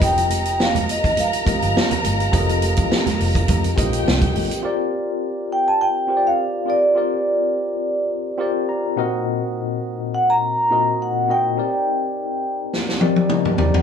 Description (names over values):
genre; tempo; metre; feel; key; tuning
lush 1970s-style soul; 104 BPM; 4/4; swing 54% on 16ths; Bb major; A4 = 440 Hz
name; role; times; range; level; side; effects
vibraphone with soft mallets; melody; 0.0-12.7 s; D5 to Bb5; -20 LUFS; right 1 dB; none
rich studio violin section; second line; 0.0-4.6 s; G4 to Bb5; -26 LUFS; left 1 dB; none
tine electric piano; accompaniment; 0.0-13.8 s; Bb2 to Bb5; -23 LUFS; left 3 dB; medium stereo tremolo
vintage muted fingered electric bass; bass; 0.0-4.5 s; F1 to F2; -23 LUFS; right 1 dB; none
vintage drum kit; drums; 0.0-4.6, 12.7-13.8 s; hi-hat, kick drum, snare drum, toms; -20 LUFS; equal; none
congas; percussion; 0.2-4.5 s; none; -28 LUFS; right 3 dB; none
room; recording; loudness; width
wet studio reverb, RT60 0.6 s; band playing live in one room; -17 LUFS; side -7 dB against mid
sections
0.0-4.6 A section; 4.6-13.8 B section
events
tine electric piano fill 8.4-9.3, 13.0-13.8; drum fill 12.7-13.8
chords
0.0 F9sus4; 4.6 Bb69; 9.0 Ebm6/Bb; 11.6 Cm9